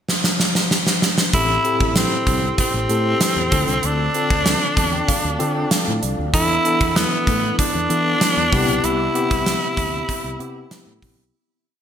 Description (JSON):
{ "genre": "1980s-style pop", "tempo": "96 BPM", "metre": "4/4", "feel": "straight", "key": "A minor", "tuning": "A4 = 440 Hz", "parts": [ { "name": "gated 80s drum kit", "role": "drums", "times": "0.1-11.2 s", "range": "hi-hat, kick drum, snare drum", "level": "-20 LUFS", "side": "right 1 dB", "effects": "gated reverb" }, { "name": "raspy tenor saxophone", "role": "melody", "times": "1.3-11.0 s", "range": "B3 to E4", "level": "-21 LUFS", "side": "equal", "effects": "digital delay" }, { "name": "tine electric piano", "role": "accompaniment", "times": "1.3-11.4 s", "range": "A2 to A5", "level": "-23 LUFS", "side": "left 2 dB", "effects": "medium tremolo" }, { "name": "mellow fretless electric bass", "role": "bass", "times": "1.3-11.3 s", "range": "A1 to E3", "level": "-25 LUFS", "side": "equal", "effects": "wide subtle chorus" } ], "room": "moderate lush hall reverb, RT60 2.0 s", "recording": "bright 1980s-style digital production", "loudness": "-16 LUFS", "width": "side -9 dB against mid", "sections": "0.0-1.3 pickup bar; 1.3-11.3 verse", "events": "drum fill 0.1-1.3; tine electric piano fill 4.5-6.3; fade-out 8.8-11.3", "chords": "0.0 N.C.; 1.3 Am7; 3.5 Dm7; 6.3 E7sus4; 8.5 Cmaj7" }